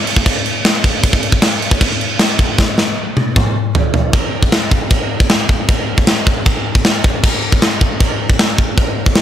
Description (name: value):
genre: metal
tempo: 155 BPM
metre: 4/4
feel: straight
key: none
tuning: none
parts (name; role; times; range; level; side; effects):
- tight metal drum kit; drums; 0.1-9.2 s; china cymbal, crash cymbal, kick drum, snare drum, toms; -12 LUFS; equal; none
room: light reverb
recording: none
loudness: -12 LUFS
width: side -10 dB against mid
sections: 0.0-4.1 A section; 4.1-9.2 B section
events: drum fill 2.6-4.1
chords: none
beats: 0.26 0.65 | 1.03 1.42 1.81 2.19 | 2.58 2.97 3.35 3.74 | 4.13 4.52 4.90 5.29 | 5.68 6.07 6.45 6.84 | 7.23 7.61 8.00 8.39 | 8.77 9.16